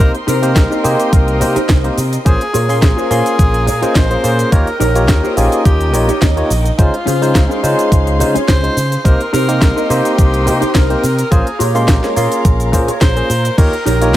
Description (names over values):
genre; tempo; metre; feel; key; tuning
nu-disco, nu disco; 106 BPM; 4/4; swing 53% on 16ths; Bb dorian; A4 = 440 Hz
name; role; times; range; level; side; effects
bright tenor saxophone; melody; 0.0-14.2 s; Eb4 to C5; -20 LUFS; equal; digital delay
barky tine electric piano; accompaniment; 0.0-14.2 s; Ab3 to C6; -17 LUFS; equal; vintage 12-bit sampler grit, sidechain pumping
muted studio violin section; sustained chords; 0.0-14.2 s; Db4 to C6; -25 LUFS; equal; sidechain pumping
picked electric bass with an envelope filter; bass; 0.0-14.2 s; Bb1 to Db3; -16 LUFS; equal; tube saturation
house drum kit; drums; 0.0-14.2 s; crash cymbal, hi-hat, shaker, snare drum; -21 LUFS; equal; none
mellow electric guitar; riff; 0.3-14.1 s; Db4 to Eb5; -21 LUFS; equal; analog chorus
electronic kick drum; drums; 0.6-14.2 s; none; -11 LUFS; equal; overdrive
room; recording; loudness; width
little or no reverb; none; -11 LUFS; side -14 dB against mid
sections
0.0-14.2 A section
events
none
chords
0.0 Cm7; 2.3 Bbm7; 4.5 Eb7; 6.8 Dbmaj7; 9.1 Cm7; 11.3 Bbm7; 13.6 Eb7